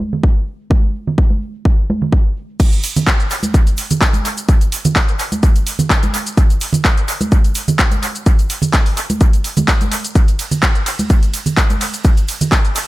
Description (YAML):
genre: house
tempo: 127 BPM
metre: 4/4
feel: swing 54% on 16ths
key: none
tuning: none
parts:
  - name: tube shaker and congas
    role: percussion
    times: 0.1-12.9 s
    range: none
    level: -20 LUFS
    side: right 3 dB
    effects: sidechain pumping on perc, low-pass filter on perc
  - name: electronic kick drum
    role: drums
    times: 0.2-12.6 s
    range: none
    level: -12 LUFS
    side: equal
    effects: overdrive
  - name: house drum kit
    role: drums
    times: 2.6-12.9 s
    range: crash cymbal, handclaps, hi-hat, ride cymbal, shaker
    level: -19 LUFS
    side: equal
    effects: overdrive, sidechain pumping on hats, sidechain pumping on cymbals, sidechain pumping on perc, dub echo
room: digital ambience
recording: echo-heavy mix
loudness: -13 LUFS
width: side -18 dB against mid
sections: 0.0-2.6 A section; 2.6-12.9 B section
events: filter sweep on drum 0.0-2.6; drop 2.6-12.9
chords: none